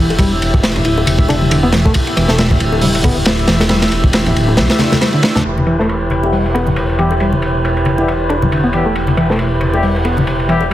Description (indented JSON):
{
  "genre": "breakbeat, breaks",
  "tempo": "137 BPM",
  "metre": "4/4",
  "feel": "swing 57% on 16ths",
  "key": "E minor",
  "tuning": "A4 = 440 Hz",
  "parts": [
    { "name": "mellow tonewheel organ", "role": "sustained chords", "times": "0.0-10.7 s", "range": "E3 to E5", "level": "-20 LUFS", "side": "equal", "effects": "overdrive, chorus vibrato, slow rotary speaker, sidechain pumping, low-pass filter" },
    { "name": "reed electric piano", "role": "riff", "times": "0.0-10.7 s", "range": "D3 to E4", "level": "-19 LUFS", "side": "equal", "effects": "overdrive, phaser, low-pass filter, ping-pong delay" },
    { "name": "dark detuned saw bass", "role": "bass", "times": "0.0-10.7 s", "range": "D1 to B1", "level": "-18 LUFS", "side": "equal", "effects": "tube saturation" },
    { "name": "crunchy breakbeat drum kit", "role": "drums", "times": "0.1-10.7 s", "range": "hi-hat, kick drum, ride cymbal, snare drum", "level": "-16 LUFS", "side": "equal", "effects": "low-pass filter on kick, low-pass filter on cymbals, low-pass filter on hats, low-pass filter on snare, low-pass filter on room" },
    { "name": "bongos and congas", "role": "percussion", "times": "0.1-10.7 s", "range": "none", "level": "-20 LUFS", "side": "left 2 dB", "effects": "none" },
    { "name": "bell-like FM electric piano", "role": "melody", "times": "0.9-1.0 s", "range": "E4", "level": "-24 LUFS", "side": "left 2 dB", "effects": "none" },
    { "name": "warm brass ensemble", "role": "stabs", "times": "6.2-10.6 s", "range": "G3 to G4", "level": "-21 LUFS", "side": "left 3 dB", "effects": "low-pass filter, ping-pong delay" }
  ],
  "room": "light reverb, studio reverb",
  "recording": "heavily compressed radio sound, multiband compression",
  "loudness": "-11 LUFS",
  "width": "side -13 dB against mid",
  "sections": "0.0-5.5 A section; 5.5-10.7 B section",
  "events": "filter sweep on brass ensemble 5.5-10.7",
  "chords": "0.0 Em",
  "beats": "| 0.20 0.63 1.07 1.51 | 1.95 2.38 2.82 3.26 | 3.70 4.14 4.58 5.01 | 5.45 5.89 6.33 6.76 | 7.20 7.64 8.08 8.52 | 8.95 9.39 9.83 10.27 | 10.71"
}